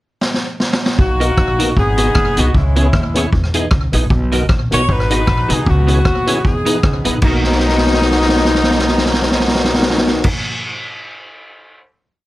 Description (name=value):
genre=ska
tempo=154 BPM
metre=4/4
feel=swing 56% on 8ths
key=B major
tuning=A4 = 440 Hz
part: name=street-band drum kit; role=drums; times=0.2-11.8 s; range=crash cymbal, hi-hat, kick drum, rim click, snare drum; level=-16 LUFS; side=equal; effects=slapback echo
part: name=warm horn section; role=melody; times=1.0-10.3 s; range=G#3 to C#5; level=-18 LUFS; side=left 1 dB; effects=slapback echo
part: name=upright bass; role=bass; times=1.0-10.3 s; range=F#1 to E2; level=-18 LUFS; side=equal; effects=none
part: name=clean electric guitar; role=accompaniment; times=1.2-10.8 s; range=A#3 to D#5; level=-23 LUFS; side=right 3 dB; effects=ensemble chorus
part: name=percussive tonewheel organ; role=stabs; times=1.2-10.3 s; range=B3 to A#4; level=-21 LUFS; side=left 2 dB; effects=slow rotary speaker
room=light reverb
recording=none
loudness=-12 LUFS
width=side -17 dB against mid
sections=0.0-1.0 pickup bar; 1.0-7.2 A section; 7.2-10.3 final chord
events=drum fill 0.2-1.0, 7.4-10.2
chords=0.0 N.C.; 1.0 Bmaj7; 1.8 G#m7; 2.5 C#m7; 3.3 Emaj7; 4.1 Bmaj7; 4.9 G#m7; 5.7 C#m7; 6.4 Emaj7; 7.2 Bmaj7